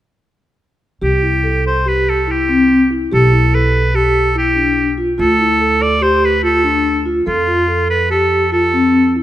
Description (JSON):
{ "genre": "contemporary instrumental, chamber music in an uneven meter", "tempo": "144 BPM", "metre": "5/4", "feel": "straight", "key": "C major", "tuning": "A4 = 440 Hz", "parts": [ { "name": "bright oboe", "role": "melody", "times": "1.0-9.1 s", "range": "F4 to D5", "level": "-16 LUFS", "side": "right 1 dB", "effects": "none" }, { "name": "vibraphone with soft mallets", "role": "arpeggios", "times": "1.0-9.2 s", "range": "C4 to A4", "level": "-15 LUFS", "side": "left 1 dB", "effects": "none" }, { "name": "upright bass", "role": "bass", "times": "1.0-9.2 s", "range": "B1 to F2", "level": "-19 LUFS", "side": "right 1 dB", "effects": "none" } ], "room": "light reverb", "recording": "none", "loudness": "-12 LUFS", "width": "side -12 dB against mid", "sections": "1.0-9.2 A section", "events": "none", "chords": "1.0 C; 3.1 Gadd9/B; 5.2 Dm; 7.3 F" }